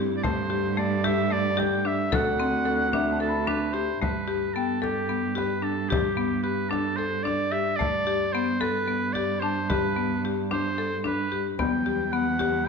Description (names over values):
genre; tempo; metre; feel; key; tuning
contemporary instrumental, chamber music in an uneven meter; 222 BPM (eighths); 7/8; straight; G major; A4 = 441 Hz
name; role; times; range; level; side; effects
mellow woodwind section; sustained chords; 0.0-4.0, 11.6-12.7 s; C3 to G4; -35 LUFS; left 1 dB; none
buzzing marimba with hard mallets; arpeggios; 0.0-12.6 s; A3 to A4; -27 LUFS; left 5 dB; none
rich cello; bass; 0.0-12.7 s; D2 to G2; -31 LUFS; right 7 dB; none
warm oboe; melody; 0.2-12.7 s; G4 to G5; -28 LUFS; right 2 dB; none
frame drum; percussion; 0.2-12.7 s; none; -32 LUFS; left 2 dB; none
large celesta; texture; 2.9-5.8, 9.4-12.7 s; E5 to B5; -34 LUFS; left 4 dB; none
room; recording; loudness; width
wet recital hall reverb, RT60 1.3 s; none; -23 LUFS; side -5 dB against mid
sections
0.0-4.0 A section; 4.0-12.7 B section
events
none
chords
0.2 Gsus2; 2.1 D7; 4.0 Gadd9; 11.6 Emadd9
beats
| 0.24 0.51 0.78 1.05 1.31 1.58 1.85 | 2.12 2.39 2.66 2.93 3.20 3.47 3.74 | 4.01 4.28 4.55 4.82 5.09 5.36 5.63 | 5.90 6.17 6.44 6.71 6.98 7.25 7.53 | 7.80 8.07 8.34 8.61 8.88 9.15 9.42 | 9.69 9.96 10.23 10.50 10.77 11.04 11.31 | 11.59 11.86 12.13 12.40 12.67